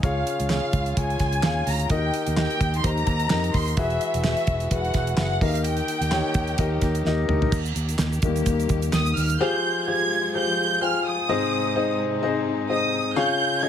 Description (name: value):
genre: piano-driven pop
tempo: 128 BPM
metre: 4/4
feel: swing 56% on 16ths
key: unclear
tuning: A4 = 440 Hz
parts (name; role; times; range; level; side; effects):
- warm symphonic violin section; melody; 0.0-13.7 s; E5 to Ab6; -26 LUFS; right 1 dB; none
- warm concert grand piano; accompaniment; 0.0-13.7 s; Ab2 to Ab5; -25 LUFS; left 4 dB; none
- warm studio string section; sustained chords; 0.0-13.7 s; C3 to G4; -35 LUFS; equal; none
- fingered electric bass; bass; 0.0-9.4 s; E1 to F2; -25 LUFS; right 1 dB; none
- damped 70s drum kit; drums; 0.0-9.4 s; crash cymbal, handclaps, hi-hat, kick drum, snare drum, toms; -26 LUFS; right 1 dB; none
- egg shaker; percussion; 7.5-9.4 s; none; -40 LUFS; right 9 dB; none
room: small room ambience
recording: none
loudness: -21 LUFS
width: side -9 dB against mid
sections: 0.0-7.5 A section; 7.5-9.4 B section; 9.4-13.7 C section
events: drum fill 7.1-7.5; grand piano solo 7.5-9.4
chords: 0.0 Db; 1.9 Eb; 3.8 Eadd9; 5.4 Eb; 9.4 Fmadd9; 11.3 Ab; 13.2 Db